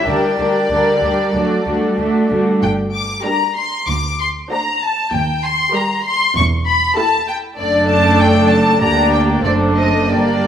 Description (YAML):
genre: quick classical-period movement for string orchestra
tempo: 96 BPM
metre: 4/4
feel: rubato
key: G minor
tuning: A4 = 440 Hz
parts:
  - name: rich studio violin section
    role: melody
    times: 0.0-10.5 s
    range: D5 to D6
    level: -17 LUFS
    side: left 2 dB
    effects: none
  - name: dark studio violin section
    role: second line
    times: 0.0-10.5 s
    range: F#4 to D5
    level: -20 LUFS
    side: left 2 dB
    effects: none
  - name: warm studio viola section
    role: accompaniment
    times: 0.0-10.5 s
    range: G3 to G4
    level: -18 LUFS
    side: right 1 dB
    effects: none
  - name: dark studio double bass section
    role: bass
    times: 0.1-10.5 s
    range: E1 to Eb2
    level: -22 LUFS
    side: right 2 dB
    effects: none
  - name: warm studio cello section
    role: bass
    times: 0.1-10.5 s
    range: D2 to A3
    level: -22 LUFS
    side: right 2 dB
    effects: none
room: wet recital hall reverb, RT60 1.7 s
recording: none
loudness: -13 LUFS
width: side -9 dB against mid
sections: 0.0-10.5 A section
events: none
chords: 0.1 Gm/D; 1.4 D; 2.6 Gm; 3.9 D7; 5.1 Eb; 6.4 A5/E; 7.6 D/F#; 8.8 Gm/D; 9.4 D7/F#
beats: | 0.08 0.71 1.35 1.99 | 2.63 3.26 3.89 4.51 | 5.13 5.75 6.36 6.97 | 7.58 8.20 8.82 9.45 | 10.10